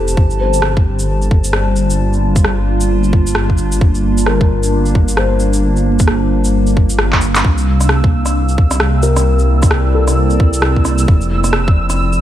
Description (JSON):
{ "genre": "future garage", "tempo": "132 BPM", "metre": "4/4", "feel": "swing 61% on 16ths", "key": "G dorian", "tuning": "A4 = 440 Hz", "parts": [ { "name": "felt-muted upright piano", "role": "accompaniment", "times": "0.0-11.1 s", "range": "A4 to C5", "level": "-23 LUFS", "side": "left 6 dB", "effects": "sidechain pumping, tape echo" }, { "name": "warbly tape-like pad", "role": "sustained chords", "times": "0.0-12.2 s", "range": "C3 to A5", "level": "-18 LUFS", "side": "right 1 dB", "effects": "chorus, built-in reverb, phaser, vintage 12-bit sampler grit, sidechain pumping" }, { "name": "dark detuned saw bass", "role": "bass", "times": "0.0-12.2 s", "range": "F1 to C2", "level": "-15 LUFS", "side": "equal", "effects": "tube saturation, sidechain pumping" }, { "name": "electronic shaker, rim click and handclaps", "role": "drums", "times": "0.1-12.2 s", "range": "none", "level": "-19 LUFS", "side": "equal", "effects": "none" }, { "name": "electronic kick drum", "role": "drums", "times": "0.2-11.7 s", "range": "none", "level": "-11 LUFS", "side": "equal", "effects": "none" }, { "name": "flickering grainy texture", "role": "texture", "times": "7.6-12.2 s", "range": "E6", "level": "-24 LUFS", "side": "right 3 dB", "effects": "built-in reverb" } ], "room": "light reverb, digital ambience", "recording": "vinyl crackle", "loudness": "-11 LUFS", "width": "side -12 dB against mid", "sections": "0.0-12.2 A section", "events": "drum fill 7.1-7.4", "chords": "0.2 Gm9; 7.4 C9; 11.1 Fmaj7(no3)", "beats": "| 0.17 0.62 1.08 1.53 | 1.99 2.44 2.90 3.35 | 3.81 4.26 4.72 5.17 | 5.62 6.08 6.54 6.99 | 7.44 7.90 8.35 8.81 | 9.26 9.72 10.17 10.62 | 11.08 11.54 11.99" }